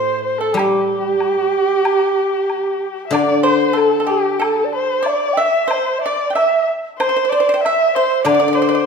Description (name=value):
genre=chinese traditional, Chinese chamber ensemble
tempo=94 BPM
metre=2/4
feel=rubato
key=unclear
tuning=A4 = 439 Hz
part: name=mellow hollow xiao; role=melody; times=0.0-8.9 s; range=G4 to G5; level=-18 LUFS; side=right 4 dB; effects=none
part: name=pipa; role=second line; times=0.0-8.8 s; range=G4 to G5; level=-21 LUFS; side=right 4 dB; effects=none
part: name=warm erhu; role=second line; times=0.0-8.9 s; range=G4 to G5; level=-20 LUFS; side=left 6 dB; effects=none
part: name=guzheng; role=accompaniment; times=0.0-5.0, 8.2-8.9 s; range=A2 to G3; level=-20 LUFS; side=left 6 dB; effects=none
part: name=woodblock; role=percussion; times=0.6-8.4 s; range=none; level=-27 LUFS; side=left 2 dB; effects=none
room=wet recital hall reverb, RT60 1.4 s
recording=minimal, uncompressed stereo recording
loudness=-14 LUFS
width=side -5 dB against mid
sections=0.6-8.9 A section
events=none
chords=none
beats=| 0.56 1.21 | 1.85 2.49 | 3.13 3.76 | 4.41 5.06 | 5.71 6.36 | 7.01 7.65 | 8.27